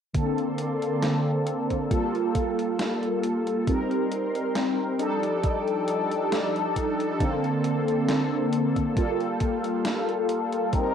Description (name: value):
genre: vaporwave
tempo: 68 BPM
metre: 4/4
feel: swing 54% on 16ths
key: G minor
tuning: A4 = 440 Hz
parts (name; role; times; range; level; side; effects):
- mellow synth brass; accompaniment; 0.1-10.9 s; D3 to Bb4; -24 LUFS; equal; phaser, wide subtle chorus, cassette tape, tape echo
- lush unison pad; sustained chords; 0.1-10.9 s; F3 to D6; -38 LUFS; equal; chorus
- electronic kick drum; drums; 0.1-10.9 s; none; -27 LUFS; equal; overdrive, vintage 12-bit sampler grit
- gated 80s digital drum machine; drums; 0.1-10.9 s; hi-hat, snare drum; -33 LUFS; right 1 dB; gated reverb, gated reverb snare, overdrive, vintage 12-bit sampler grit
room: moderate studio reverb, RT60 0.5 s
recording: rough home demo mix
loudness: -23 LUFS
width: side -8 dB against mid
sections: 0.1-10.9 A section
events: none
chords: 0.1 Bbmaj9; 1.9 Gm9; 3.7 Cm7; 5.0 F13; 7.2 Bbmaj9; 9.0 Gm9